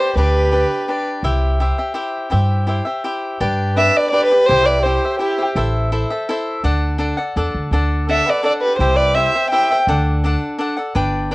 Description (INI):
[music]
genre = mexican folk, mariachi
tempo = 167 BPM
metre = 3/4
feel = straight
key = C major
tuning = A4 = 440 Hz
[part]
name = dark violin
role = melody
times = 0.0-1.0, 3.8-5.5, 8.1-9.8 s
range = G4 to G5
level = -16 LUFS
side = equal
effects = cassette tape
[part]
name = brilliant trumpet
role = second line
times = 0.0-1.0, 3.8-5.5, 8.1-9.8 s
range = E4 to E5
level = -24 LUFS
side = right 2 dB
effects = cassette tape
[part]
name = cavaquinho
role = accompaniment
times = 0.0-11.3 s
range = D4 to G5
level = -21 LUFS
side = left 1 dB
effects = cassette tape
[part]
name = upright bass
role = bass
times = 0.2-11.3 s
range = G1 to G2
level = -18 LUFS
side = equal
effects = none
[sound]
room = light reverb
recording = home recording on cassette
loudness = -15 LUFS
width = side -21 dB against mid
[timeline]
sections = 0.0-3.4 A section; 3.4-11.3 B section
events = none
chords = 0.0 G; 1.2 C; 3.4 G; 4.5 C; 5.6 Am; 6.6 D; 8.8 C; 9.9 D